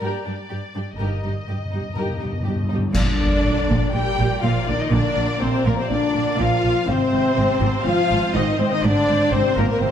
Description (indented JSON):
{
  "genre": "cinematic, epic orchestral film score",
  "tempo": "122 BPM",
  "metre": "4/4",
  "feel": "straight",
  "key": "unclear",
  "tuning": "A4 = 440 Hz",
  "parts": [
    { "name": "rich symphonic violin section", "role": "melody", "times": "0.0-9.9 s", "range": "Bb4 to G5", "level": "-30 LUFS", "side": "left 3 dB", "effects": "none" },
    { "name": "warm symphonic violin section", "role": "second line", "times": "0.0-9.9 s", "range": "D4 to G5", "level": "-29 LUFS", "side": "left 2 dB", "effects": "none" },
    { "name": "warm symphonic viola section", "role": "accompaniment", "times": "0.0-9.9 s", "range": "Bb3 to G4", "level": "-28 LUFS", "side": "equal", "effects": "none" },
    { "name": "dark French horn section", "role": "sustained chords", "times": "0.0-9.9 s", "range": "Bb3 to G4", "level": "-25 LUFS", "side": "left 3 dB", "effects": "none" },
    { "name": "warm symphonic cello section", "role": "bass", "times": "0.0-9.9 s", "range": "G2 to Bb2", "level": "-25 LUFS", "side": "right 2 dB", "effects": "none" },
    { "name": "warm symphonic double bass section", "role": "bass", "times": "1.0-9.9 s", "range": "G1 to Bb1", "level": "-26 LUFS", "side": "right 3 dB", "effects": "none" },
    { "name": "timpani", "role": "percussion", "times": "1.0-2.9 s", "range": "G2", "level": "-27 LUFS", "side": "equal", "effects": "none" },
    { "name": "mellow hollow silver concert flute", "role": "second line", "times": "2.9-9.9 s", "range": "Bb4 to G5", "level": "-28 LUFS", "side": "left 2 dB", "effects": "none" },
    { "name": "clash cymbals and concert bass drum", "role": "percussion", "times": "2.9-3.9 s", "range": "none", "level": "-26 LUFS", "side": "equal", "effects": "none" },
    { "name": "warm symphonic string section", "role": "sustained chords", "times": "3.0-9.9 s", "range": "Ab3 to D5", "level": "-29 LUFS", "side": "left 3 dB", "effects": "none" },
    { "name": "warm trombone section", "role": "sustained chords", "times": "3.0-9.9 s", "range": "Bb2 to G3", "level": "-29 LUFS", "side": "right 4 dB", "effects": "none" }
  ],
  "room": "moderate scoring stage reverb, RT60 1.6 s",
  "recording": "none",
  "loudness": "-18 LUFS",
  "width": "side -9 dB against mid",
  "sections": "0.0-3.0 A section; 3.0-9.9 B section",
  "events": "timpani fill 1.0-3.0; band accent 3.0-3.5",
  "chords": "0.0 Gm; 1.0 Eb/G; 3.0 Bb; 6.9 Ab",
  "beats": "0.01 0.50 | 1.00 1.49 1.98 2.47 | 2.96 3.45 3.94 4.43 | 4.92 5.41 5.90 6.39 | 6.88 7.38 7.87 8.36 | 8.85 9.34 9.82"
}